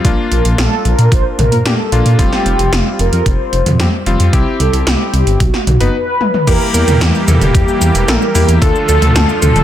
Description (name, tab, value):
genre	synthwave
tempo	112 BPM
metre	4/4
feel	straight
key	unclear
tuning	A4 = 439 Hz
part	warm electric grand piano	stabs	0.0-9.6 s	G3 to B4	-20 LUFS	left 4 dB	tape echo
part	dark detuned saw bass	bass	0.0-9.6 s	D1 to Bb2	-13 LUFS	equal	none
part	80s electronic pad drums	drums	0.0-9.6 s	cabasa, crash cymbal, hi-hat, snare drum, toms	-17 LUFS	right 1 dB	gated reverb on snare and toms
part	electronic kick drum	drums	0.0-8.7 s	none	-14 LUFS	equal	none
part	mellow synth brass	melody	0.3-9.6 s	F#4 to C5	-18 LUFS	equal	chorus, tape echo
part	soft synth bell	second line	6.5-9.6 s	G4 to Bb4	-22 LUFS	equal	chorus
part	brassy analog pad	sustained chords	6.5-9.6 s	D3 to G4	-18 LUFS	right 1 dB	chorus, sidechain pumping
room	light reverb, digital ambience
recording	dense, heavily limited modern master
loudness	-10 LUFS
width	side -11 dB against mid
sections	0.0-6.5 A section; 6.5-9.6 B section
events	break 5.9-6.5; drum fill 6.2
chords	0.0 Bb; 2.2 Fsus2; 4.3 C; 5.4 B; 6.5 Edim; 8.6 Dm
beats	| 0.05 0.58 1.12 1.65 | 2.19 2.73 3.26 3.80 | 4.33 4.87 5.40 5.94 | 6.48 7.01 7.55 8.08 | 8.62 9.15